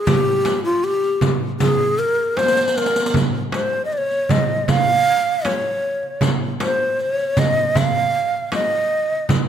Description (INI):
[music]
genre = Turkish makam ensemble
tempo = 78 BPM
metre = 4/4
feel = straight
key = F makam nihavent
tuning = A4 = 439 Hz
[part]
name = breathy low ney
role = melody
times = 0.0-9.3 s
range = F4 to F5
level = -18 LUFS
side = equal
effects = none
[part]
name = darbuka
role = percussion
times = 0.1-9.5 s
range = none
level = -22 LUFS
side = right 6 dB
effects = none
[part]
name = frame drum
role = percussion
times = 0.1-9.5 s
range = none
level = -24 LUFS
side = left 4 dB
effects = none
[part]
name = riq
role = percussion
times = 0.1-9.5 s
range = none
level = -29 LUFS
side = equal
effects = none
[sound]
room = light reverb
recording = close, detailed microphones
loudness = -16 LUFS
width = side -9 dB against mid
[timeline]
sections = 0.0-9.5 A section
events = drum fill 2.4-3.1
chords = none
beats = | 0.07 0.84 1.60 2.37 | 3.14 3.91 4.68 5.45 | 6.22 6.99 7.76 8.53 | 9.29